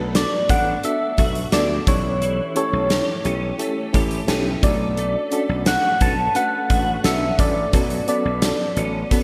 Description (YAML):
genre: 1980s-style pop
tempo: 87 BPM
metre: 4/4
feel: straight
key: B minor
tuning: A4 = 439 Hz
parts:
  - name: soft struck synth lead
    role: melody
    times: 0.0-9.2 s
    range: B4 to A5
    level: -25 LUFS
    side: equal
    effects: chorus, delay
  - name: FM electric piano with tremolo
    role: accompaniment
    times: 0.0-9.2 s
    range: A3 to B4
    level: -28 LUFS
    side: equal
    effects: none
  - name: twelve-string electric guitar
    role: riff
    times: 0.0-9.2 s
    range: E3 to A4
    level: -33 LUFS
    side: equal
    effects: ensemble chorus, delay
  - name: slap bass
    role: bass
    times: 0.0-9.0 s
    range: A1 to D2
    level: -27 LUFS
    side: equal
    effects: none
  - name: gated 80s drum kit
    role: drums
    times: 0.1-9.2 s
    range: hi-hat, kick drum, snare drum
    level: -24 LUFS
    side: equal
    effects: none
room: wet lush hall reverb, RT60 3.0 s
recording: bright 1980s-style digital production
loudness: -20 LUFS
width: mono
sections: 0.0-9.2 A section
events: none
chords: 0.0 Bm7; 1.9 A7/B; 4.6 Bm9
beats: 0.15 0.84 1.53 | 2.22 2.91 3.60 4.29 | 4.98 5.67 6.36 7.05 | 7.74 8.43 9.12